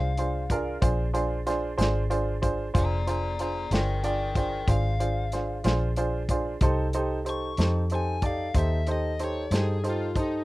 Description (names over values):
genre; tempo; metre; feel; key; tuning
slow blues; 62 BPM (dotted quarters); 12/8; straight; Bb mixolydian; A4 = 440 Hz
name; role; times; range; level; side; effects
overdriven semi-hollow guitar; melody; 0.0-10.4 s; Eb4 to Db6; -33 LUFS; left 4 dB; none
clear upright piano; accompaniment; 0.0-10.4 s; D4 to D5; -29 LUFS; right 2 dB; none
vintage muted fingered electric bass; bass; 0.0-10.4 s; F1 to G2; -28 LUFS; equal; none
warm soul drum kit; drums; 0.2-10.3 s; hi-hat, kick drum, snare drum; -28 LUFS; equal; none
room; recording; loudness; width
little or no reverb; rough home demo mix; -24 LUFS; side -18 dB against mid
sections
0.0-10.4 A section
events
none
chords
0.0 Bb7; 6.6 F7